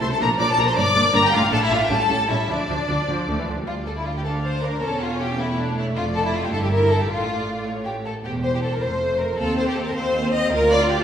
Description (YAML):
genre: quick classical-period movement for string orchestra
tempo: 105 BPM (dotted quarters)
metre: 6/8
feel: straight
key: D minor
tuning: A4 = 440 Hz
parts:
  - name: rich studio violin section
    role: melody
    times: 0.0-11.0 s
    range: C5 to D6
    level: -25 LUFS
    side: left 2 dB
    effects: none
  - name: warm studio violin section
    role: second line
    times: 0.0-11.0 s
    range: D4 to Eb5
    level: -23 LUFS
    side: left 1 dB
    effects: none
  - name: rich studio viola section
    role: accompaniment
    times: 0.0-11.0 s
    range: E3 to F4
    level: -28 LUFS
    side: right 1 dB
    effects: none
  - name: rich studio cello section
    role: bass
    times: 0.0-11.0 s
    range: D2 to D3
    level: -29 LUFS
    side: right 2 dB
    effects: none
  - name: rich studio double bass section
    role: bass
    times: 0.0-11.0 s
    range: E1 to Eb2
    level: -28 LUFS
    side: right 1 dB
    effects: none
room: wet recital hall reverb, RT60 1.3 s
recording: recorded in a church or concert hall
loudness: -19 LUFS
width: side -8 dB against mid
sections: 0.0-3.7 A section; 3.7-11.0 A section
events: none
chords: 0.2 Bb; 0.8 Gm; 1.3 D5; 1.9 A7; 2.5 Dm; 4.8 A/E; 6.0 Dm/F; 6.5 Gm69; 7.1 Dm/A; 8.2 C/E; 8.8 F; 9.4 F5/Eb; 10.5 Dm